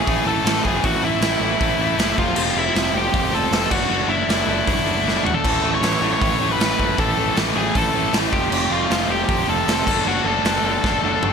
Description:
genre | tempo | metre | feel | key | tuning
punk rock | 156 BPM | 4/4 | straight | unclear | A4 = 439 Hz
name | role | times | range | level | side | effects
high-gain lead guitar | melody | 0.0-11.3 s | E4 to C#6 | -23 LUFS | equal | distortion
distorted electric guitar | riff | 0.0-11.3 s | F2 to D4 | -24 LUFS | left 18 dB | overdrive
distorted electric guitar | riff | 0.0-11.3 s | F2 to D4 | -25 LUFS | right 17 dB | distortion
growling picked electric bass | bass | 0.1-11.3 s | E1 to A1 | -26 LUFS | equal | overdrive
raw garage drum kit | drums | 0.1-11.3 s | crash cymbal, hi-hat, kick drum, snare drum, toms | -22 LUFS | equal | none
room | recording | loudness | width
light reverb | none | -17 LUFS | side -6 dB against mid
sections
0.0-11.3 A section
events
drum fill 5.1-5.4, 10.8-11.3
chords
0.0 A5; 2.2 F; 3.7 D/F#; 5.4 A; 8.3 F; 9.9 D/F#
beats
0.07 0.45 | 0.84 1.22 1.60 1.99 | 2.37 2.75 3.14 3.52 | 3.90 4.29 4.67 5.06 | 5.44 5.83 6.21 6.59 | 6.98 7.36 7.75 8.13 | 8.52 8.90 9.29 9.68 | 10.06 10.45 10.84 11.22

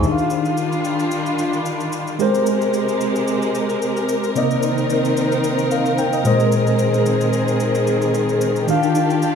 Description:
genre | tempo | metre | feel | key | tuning
amapiano | 111 BPM | 4/4 | swing 55% on 16ths | Eb major | A4 = 442 Hz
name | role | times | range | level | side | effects
tine electric piano | accompaniment | 0.0-9.3 s | Bb2 to C6 | -19 LUFS | equal | medium stereo tremolo
warm studio string section | sustained chords | 0.0-9.3 s | C3 to Bb4 | -20 LUFS | left 1 dB | none
shaker | drums | 0.0-9.3 s | none | -34 LUFS | equal | none
room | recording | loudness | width
light reverb | studio reverb | -16 LUFS | side -7 dB against mid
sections
0.0-9.3 A section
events
none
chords
0.0 Ebmaj9; 2.2 Abmaj9; 4.4 Cm9; 6.2 Bb9sus4; 8.7 Ebmaj9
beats
| 0.03 0.57 1.11 1.66 | 2.20 2.74 3.28 3.82 | 4.36 4.90 5.44 5.98 | 6.52 7.06 7.60 8.14 | 8.68 9.22

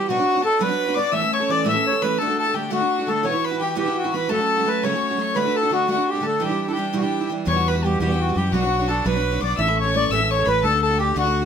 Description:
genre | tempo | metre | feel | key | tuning
celtic folk, Celtic jig | 114 BPM (dotted quarters) | 6/8 | straight | E dorian | A4 = 440 Hz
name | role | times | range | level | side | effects
accordion | melody | 0.0-11.4 s | F#4 to E5 | -21 LUFS | equal | none
clear fiddle | second line | 0.0-11.4 s | F#5 to E6 | -27 LUFS | left 6 dB | none
picked steel-string acoustic guitar | accompaniment | 0.0-11.4 s | E2 to C#5 | -25 LUFS | right 3 dB | none
fingered electric bass | bass | 7.5-11.4 s | A1 to F#2 | -23 LUFS | left 1 dB | none
room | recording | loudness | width
moderate studio reverb, RT60 0.5 s | none | -18 LUFS | side -7 dB against mid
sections
0.0-7.5 A section; 7.5-11.4 A section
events
none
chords
0.1 Bmadd9; 1.1 A; 2.2 D; 3.2 Esus2; 4.3 F#m; 5.4 D; 6.4 Em7; 7.5 Emadd9; 8.5 Bmadd9; 9.6 A; 10.6 D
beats
| 0.07 0.60 | 1.13 1.66 | 2.19 2.72 | 3.25 3.78 | 4.30 4.83 | 5.36 5.89 | 6.42 6.95 | 7.47 8.00 | 8.53 9.05 | 9.58 10.11 | 10.63 11.16

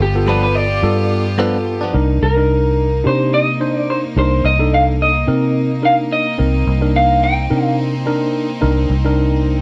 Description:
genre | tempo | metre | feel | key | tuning
blues | 108 BPM | 4/4 | swing 54% on 16ths | C dorian | A4 = 442 Hz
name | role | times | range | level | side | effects
electric guitar through a small old amp | melody | 0.0-7.8 s | G4 to G5 | -20 LUFS | equal | lush chorus, slapback echo, plate reverb
tine electric piano | accompaniment | 0.0-9.6 s | B3 to C5 | -22 LUFS | equal | overdrive, plate reverb
bright chamber string section | sustained chords | 0.0-9.6 s | Bb3 to G4 | -29 LUFS | equal | plate reverb
vintage muted fingered electric bass | bass | 0.0-9.6 s | G1 to C3 | -20 LUFS | equal | none
direct-recorded clean electric guitar | stabs | 0.3-2.0 s | G2 to D4 | -24 LUFS | equal | plate reverb
room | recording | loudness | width
moderate club reverb, RT60 0.7 s | none | -16 LUFS | mono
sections
0.0-1.9 A section; 1.9-9.6 B section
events
clean electric guitar solo 0.0-1.9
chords
0.0 G7; 1.9 Cm9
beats
0.28 0.83 1.39 | 1.95 2.50 3.06 3.62 | 4.17 4.73 5.29 5.84 | 6.40 6.95 7.51 8.07 | 8.62 9.18

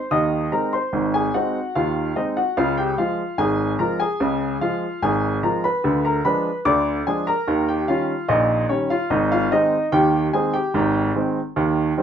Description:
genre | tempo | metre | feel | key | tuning
ragtime piano | 73 BPM | 2/4 | straight | Ab major | A4 = 437 Hz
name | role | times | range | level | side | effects
bright upright piano | solo | 0.0-12.0 s | Ab1 to Eb6 | -18 LUFS | equal | none
room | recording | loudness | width
moderate small room reverb, RT60 0.5 s | rough home demo mix | -18 LUFS | side -8 dB against mid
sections
0.0-12.0 A section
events
none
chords
0.0 Ab; 0.9 Ab7; 2.6 Db; 5.8 Ddim7; 7.5 Eb7; 9.1 Ab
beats
0.11 | 0.93 1.75 | 2.57 3.39 | 4.20 5.02 | 5.84 6.66 | 7.48 8.29 | 9.11 9.93 | 10.74 11.56

